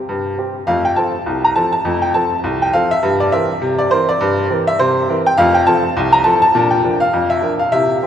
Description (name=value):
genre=ragtime piano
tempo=102 BPM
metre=2/4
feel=swing 59% on 16ths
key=F major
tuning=A4 = 439 Hz
part: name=clear upright piano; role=solo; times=0.1-8.1 s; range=C2 to Bb5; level=-13 LUFS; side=equal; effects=none
room=wet cathedral reverb, RT60 5.6 s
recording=recorded in a church or concert hall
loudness=-13 LUFS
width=side -9 dB against mid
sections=0.7-8.1 A section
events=none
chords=0.0 C5; 0.7 F; 3.0 C7/G; 5.4 F; 6.5 Bb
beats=0.08 | 0.67 1.26 | 1.84 2.43 | 3.02 3.61 | 4.20 4.78 | 5.37 5.95 | 6.54 7.13 | 7.72